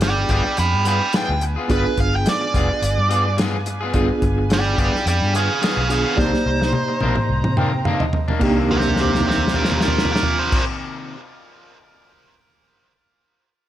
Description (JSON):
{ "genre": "straight-eighth soul blues", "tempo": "107 BPM", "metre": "4/4", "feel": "swing 54% on 16ths", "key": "C minor", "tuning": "A4 = 441 Hz", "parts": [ { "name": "smooth overdriven lead guitar", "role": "melody", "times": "0.0-10.6 s", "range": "F4 to B5", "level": "-22 LUFS", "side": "right 2 dB", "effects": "none" }, { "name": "reed electric piano", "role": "accompaniment", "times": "0.0-10.6 s", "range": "Bb3 to G5", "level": "-25 LUFS", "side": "right 2 dB", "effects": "fast tremolo" }, { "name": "clear horn section", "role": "sustained chords", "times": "0.0-10.6 s", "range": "Eb4 to Bb5", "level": "-33 LUFS", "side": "right 2 dB", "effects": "none" }, { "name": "electric guitar at the edge of break-up", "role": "stabs", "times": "0.0-11.1 s", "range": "C3 to Ab4", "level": "-27 LUFS", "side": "left 3 dB", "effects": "none" }, { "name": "vintage muted fingered electric bass", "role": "bass", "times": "0.0-10.6 s", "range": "F1 to C3", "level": "-22 LUFS", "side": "equal", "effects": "none" }, { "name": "warm soul drum kit", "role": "drums", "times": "0.0-12.1 s", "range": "crash cymbal, hi-hat, kick drum, snare drum, toms", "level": "-22 LUFS", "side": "equal", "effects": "none" } ], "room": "light reverb", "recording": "none", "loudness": "-16 LUFS", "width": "side -12 dB against mid", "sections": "0.0-8.4 A section; 8.4-10.7 B section", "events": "drum fill 6.2-8.4, 8.7-10.5; reed electric piano fill 7.3-8.4", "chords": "0.0 G7b9; 6.2 Cm9", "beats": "0.02 0.58 1.14 | 1.70 2.26 2.82 3.38 | 3.94 4.50 5.06 5.62 | 6.18 6.74 7.30 7.86 | 8.42 8.98 9.54 10.10" }